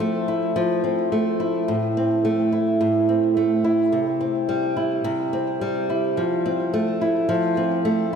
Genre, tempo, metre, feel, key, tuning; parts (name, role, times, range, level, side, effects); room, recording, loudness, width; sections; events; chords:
folktronica; 107 BPM; 4/4; straight; F major; A4 = 442 Hz
flamenco guitar; solo; 0.0-8.2 s; A2 to E4; -19 LUFS; equal; ping-pong delay
wet lush hall reverb, RT60 3.0 s; dreamy mix soaked in reverb; -19 LUFS; side -6 dB against mid
0.0-8.2 A section
0.0 Fmaj7; 1.7 Am; 3.9 C; 6.2 Fmaj7